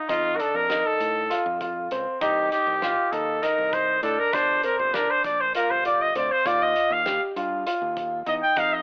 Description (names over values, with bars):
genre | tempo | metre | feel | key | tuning
progressive instrumental, band music in an uneven meter | 198 BPM (eighths) | 7/8 | straight | unclear | A4 = 440 Hz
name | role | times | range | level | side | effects
clear trumpet | melody | 0.0-8.8 s | F4 to G5 | -22 LUFS | equal | cassette tape
clear concert grand piano | arpeggios | 0.0-8.8 s | C4 to G4 | -26 LUFS | equal | cassette tape, analog delay
modern bright fingered electric bass | bass | 0.1-8.8 s | G1 to A2 | -37 LUFS | equal | none
loose indie drum kit | drums | 0.1-8.7 s | hi-hat, kick drum, snare drum | -35 LUFS | equal | none
room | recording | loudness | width
moderate spring reverb, RT60 2.5 s | home recording on cassette, telephone sound | -21 LUFS | side -36 dB against mid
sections
0.0-8.8 A section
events
trumpet solo 0.0-8.8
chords
0.1 F7; 2.2 Cm; 4.3 Gm7; 6.5 Ebadd9